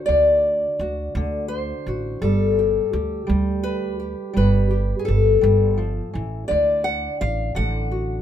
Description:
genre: blues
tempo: 56 BPM (dotted quarters)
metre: 12/8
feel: straight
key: D mixolydian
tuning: A4 = 440 Hz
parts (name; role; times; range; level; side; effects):
- fingerpicked old ladder-braced acoustic guitar; melody; 0.0-8.2 s; D3 to F#5; -20 LUFS; left 2 dB; none
- upright bass; bass; 0.1-8.2 s; G1 to D2; -23 LUFS; right 1 dB; none
room: light reverb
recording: minimal, uncompressed stereo recording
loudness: -19 LUFS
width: side -10 dB against mid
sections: 0.0-8.2 A section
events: none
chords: 0.0 D7; 2.2 G; 6.5 D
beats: 0.08 1.15 | 2.22 3.29 4.36 5.43 | 6.50 7.57

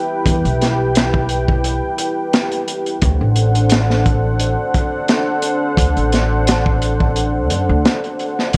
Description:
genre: trip hop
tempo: 87 BPM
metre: 4/4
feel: swing 54% on 16ths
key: unclear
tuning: A4 = 440 Hz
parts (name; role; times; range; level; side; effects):
- dark analog pad; sustained chords; 0.0-8.6 s; D4 to G5; -22 LUFS; equal; chorus
- upright bass; bass; 0.3-8.6 s; A1 to F#2; -20 LUFS; equal; none
- crunchy breakbeat drum kit; drums; 0.3-8.6 s; hi-hat, kick drum, snare drum; -20 LUFS; equal; none
room: studio reverb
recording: worn, warbling old tape, cassette tape, warbly pitch drift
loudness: -17 LUFS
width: mono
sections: 0.0-8.6 A section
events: none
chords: 0.0 Em; 3.0 D7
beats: | 0.26 0.95 1.64 2.33 | 3.02 3.71 4.40 5.09 | 5.78 6.47 7.16 7.85 | 8.54

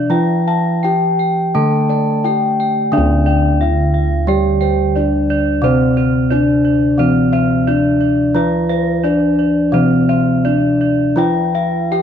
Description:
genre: gamelan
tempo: 87 BPM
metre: 4/4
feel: uneven beats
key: D slendro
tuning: A4 = 439 Hz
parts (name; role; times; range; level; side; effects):
- gamelan-type bronze metallophone; melody; 0.0-12.0 s; C4-25c to A4; -17 LUFS; equal; none
- gamelan-type bronze metallophone; accompaniment; 0.0-12.0 s; C3-25c to A3; -19 LUFS; right 1 dB; none
- gamelan-type bronze metallophone; arpeggios; 0.0-12.0 s; C5-25c to A5; -23 LUFS; right 7 dB; none
- gamelan-type bossed gongs; bass; 0.0-12.0 s; D2 to C5-25c; -20 LUFS; equal; none
- gamelan-type bossed gongs; arpeggios; 0.1-12.0 s; C5-25c to A5; -21 LUFS; left 10 dB; none
room: wet spring reverb, RT60 1.6 s, small room ambience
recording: 1960s-style stereo with parts hard left and right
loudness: -12 LUFS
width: side -8 dB against mid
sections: 0.0-2.9 A section; 2.9-12.0 B section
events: none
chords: none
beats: | 0.10 0.83 1.54 2.24 | 2.92 3.60 4.28 4.96 | 5.63 6.31 6.99 7.67 | 8.35 9.03 9.73 10.44 | 11.17 11.91

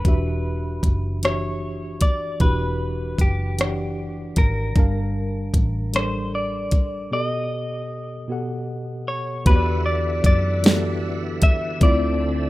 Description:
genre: slow six-eight R&B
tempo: 51 BPM (dotted quarters)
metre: 6/8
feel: straight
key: E dorian, E minor from 9.5 s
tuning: A4 = 437 Hz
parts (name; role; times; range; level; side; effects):
- clean electric guitar; melody; 0.0-12.5 s; G4 to E5; -27 LUFS; left 1 dB; none
- tine electric piano; accompaniment; 0.0-12.5 s; B2 to A5; -28 LUFS; equal; overdrive, fast stereo tremolo
- smooth R&B drum kit; drums; 0.0-12.0 s; hi-hat, kick drum, rim click, snare drum; -17 LUFS; equal; none
- vintage muted fingered electric bass; bass; 0.1-12.5 s; E1 to F#2; -25 LUFS; equal; none
- bright tonewheel organ; sustained chords; 9.5-12.5 s; D3 to F#5; -32 LUFS; right 1 dB; overdrive, chorus vibrato, slow rotary speaker
room: digital ambience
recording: rough home demo mix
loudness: -20 LUFS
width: side -17 dB against mid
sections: 0.0-9.5 A section; 9.5-12.5 B section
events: break 7.1-9.5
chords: 0.0 Em9; 4.8 Gm9; 7.1 B7b13; 9.5 Em9; 11.8 Dm9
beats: | 0.05 1.23 | 2.40 3.58 | 4.75 5.93 | 7.11 8.28 | 9.46 10.64 | 11.81

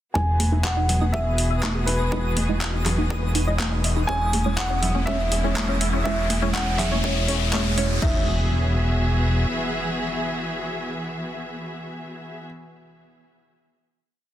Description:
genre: progressive house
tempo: 122 BPM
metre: 4/4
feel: straight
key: E major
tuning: A4 = 440 Hz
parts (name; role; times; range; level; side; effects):
- dark grand piano; melody; 0.1-12.4 s; B4 to G#5; -29 LUFS; right 1 dB; low-pass filter, dub echo
- muted symphonic string section; sustained chords; 0.2-12.4 s; E3 to E5; -30 LUFS; equal; sidechain pumping
- tight sequenced synth; arpeggios; 0.2-8.3 s; C#4 to E5; -32 LUFS; left 1 dB; chorus, phaser, sidechain pumping, dub echo
- deep mellow chord stab; stabs; 0.2-12.4 s; G#3 to E5; -32 LUFS; right 3 dB; chorus, phaser, sidechain pumping, dub echo
- fat analog bass; bass; 0.2-9.5 s; E1; -23 LUFS; equal; sidechain pumping
- electronic kick drum; drums; 0.2-8.1 s; none; -30 LUFS; equal; high-pass filter on kick, small room ambience
- riser and impact; sound effects; 1.8-12.5 s; none; -32 LUFS; left 1 dB; none
- twinkling granular texture; texture; 1.0-8.0 s; D#6; -38 LUFS; right 1 dB; built-in reverb, sidechain pumping
- pop drum kit; drums; 0.4-8.1 s; crash cymbal, handclaps, hi-hat; -30 LUFS; equal; sidechain pumping on hats, high-pass filter on hats, small room ambience, soft clipping on snare, high-pass filter on snare, sidechain pumping on cymbals, high-pass filter on cymbals
- congas; percussion; 0.4-7.6 s; none; -32 LUFS; right 1 dB; sidechain pumping on perc
room: digital ambience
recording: dense, heavily limited modern master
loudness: -20 LUFS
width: side -12 dB against mid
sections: 0.2-8.0 build; 8.0-12.0 final chord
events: build-up 0.2-8.0; filter sweep on synth arpeggio sound 0.2-8.0; filter sweep on grand piano 0.2-8.0; riser 1.8-8.0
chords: 0.2 Emaj7; 4.1 C#m/E; 8.0 E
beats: | 0.15 0.65 1.14 1.63 | 2.12 2.61 3.10 3.60 | 4.09 4.58 5.07 5.56 | 6.06 6.55 7.04 7.53 | 8.02 8.52 9.01 9.50 | 9.99 10.48 10.97 11.46

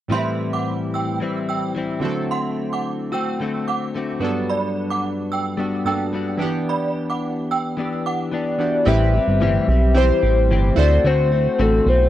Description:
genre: indie pop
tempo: 110 BPM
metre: 4/4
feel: straight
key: A dorian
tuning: A4 = 438 Hz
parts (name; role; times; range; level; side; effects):
- synth chime; second line; 0.1-8.2 s; D5 to E6; -26 LUFS; right 4 dB; ensemble chorus, tremolo, tape echo
- chorused retro synth keys; accompaniment; 0.1-12.1 s; G2 to F#5; -26 LUFS; right 5 dB; none
- direct-recorded clean electric guitar; accompaniment; 0.1-12.1 s; A2 to G4; -24 LUFS; left 4 dB; analog chorus, warbly pitch drift
- hollow clarinet-like synth lead; melody; 8.3-12.1 s; A4 to E5; -20 LUFS; left 3 dB; wide subtle chorus, tape echo
- chorused synth bass; bass; 8.9-12.1 s; G1 to D2; -17 LUFS; equal; none
room: little or no reverb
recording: dry, close 1970s-style studio recording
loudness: -18 LUFS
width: side -13 dB against mid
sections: 0.1-8.9 A section; 8.9-12.1 B section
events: none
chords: 0.1 Am7; 2.0 D7; 4.2 Gmaj7; 6.4 Em7; 8.9 Am7; 10.8 D7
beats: | 0.12 0.67 1.21 1.76 | 2.31 2.85 3.40 3.95 | 4.49 5.04 5.59 6.13 | 6.68 7.23 7.77 8.32 | 8.87 9.41 9.96 10.50 | 11.05 11.59

